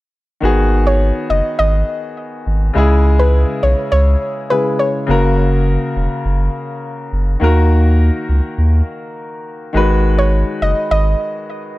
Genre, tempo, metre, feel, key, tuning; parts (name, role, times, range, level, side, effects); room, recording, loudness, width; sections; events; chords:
dancehall; 103 BPM; 4/4; straight; G# minor; A4 = 440 Hz
clear concert grand piano; accompaniment; 0.4-11.8 s; C#3 to B4; -19 LUFS; left 2 dB
warm sub bass; bass; 0.4-11.2 s; E1 to D#2; -13 LUFS; equal
soft round pluck; melody; 0.9-4.9, 10.2-11.3 s; B4 to D#5; -18 LUFS; equal; chorus
studio reverb; dry, gritty hardware recording; -13 LUFS; side -18 dB against mid
0.4-11.8 A section
0.4 G#m7; 2.8 C#m; 5.1 F#; 7.4 D#m; 9.7 G#m7